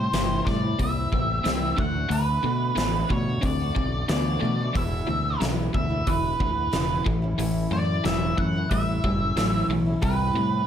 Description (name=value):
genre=classic rock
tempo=91 BPM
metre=4/4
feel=straight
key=unclear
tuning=A4 = 440 Hz
part: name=octave-fuzz lead guitar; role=melody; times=0.0-10.7 s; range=B4 to F#5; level=-28 LUFS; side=right 2 dB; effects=distortion
part: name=picked old ladder-braced acoustic guitar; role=accompaniment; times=0.0-10.7 s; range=E2 to F#4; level=-34 LUFS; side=equal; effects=none
part: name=crunchy overdriven guitar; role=riff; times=0.0-10.7 s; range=E2 to C4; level=-28 LUFS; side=left 1 dB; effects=none
part: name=growling fingered electric bass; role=bass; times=0.0-10.6 s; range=E1 to B2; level=-28 LUFS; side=equal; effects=overdrive
part: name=huge arena drum kit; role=drums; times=0.1-10.2 s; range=hi-hat, kick drum, snare drum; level=-28 LUFS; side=equal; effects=none
room=moderate large studio reverb, RT60 0.9 s, studio reverb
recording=none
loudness=-22 LUFS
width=side -9 dB against mid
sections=0.0-10.7 A section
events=none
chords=0.0 C; 1.8 D; 4.8 E; 7.1 A; 10.0 C